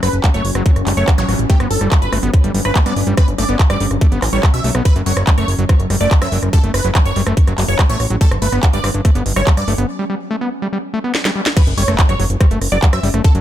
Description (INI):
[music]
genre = psychedelic trance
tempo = 143 BPM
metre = 4/4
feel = straight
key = F# phrygian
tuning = A4 = 441 Hz
[part]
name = supersaw stab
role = melody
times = 0.0-13.3 s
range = G4 to E5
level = -23 LUFS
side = right 1 dB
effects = phaser, sidechain pumping, digital delay
[part]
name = swarming drone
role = sustained chords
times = 0.0-13.4 s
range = F#3 to C#4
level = -26 LUFS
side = equal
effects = built-in reverb, sidechain pumping
[part]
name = overdriven acid bass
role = riff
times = 0.0-13.4 s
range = F#3 to B3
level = -23 LUFS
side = equal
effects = distortion, auto-pan, cassette tape, sidechain pumping, digital delay
[part]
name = fat analog bass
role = bass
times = 0.0-13.4 s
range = F#1 to G2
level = -18 LUFS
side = equal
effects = none
[part]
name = techno drum kit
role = drums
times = 0.0-13.4 s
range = crash cymbal, handclaps, hi-hat, rim click, snare drum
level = -21 LUFS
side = right 1 dB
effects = none
[part]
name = electronic kick drum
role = drums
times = 0.2-13.3 s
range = none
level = -11 LUFS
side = equal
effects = none
[part]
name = zap and impact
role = sound effects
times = 1.2-1.3, 11.3-13.2 s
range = none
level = -27 LUFS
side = equal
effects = none
[sound]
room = little or no reverb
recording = none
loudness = -13 LUFS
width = side -12 dB against mid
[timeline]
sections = 0.0-11.6 A section; 11.6-13.4 B section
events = break 9.9-11.6; drum fill 11.1-11.6; drop 11.6-13.4; impact 11.6-13.2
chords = 0.0 F#5; 1.5 Gmaj9#11; 4.9 F#5; 8.2 Gmaj7#11; 11.6 F#5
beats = 0.24 0.66 1.08 | 1.50 1.92 2.33 2.75 | 3.17 3.59 4.01 4.43 | 4.85 5.27 5.69 6.11 | 6.53 6.95 7.37 7.79 | 8.21 8.63 9.05 9.47 | 9.89 10.31 10.73 11.15 | 11.57 11.99 12.40 12.82 | 13.24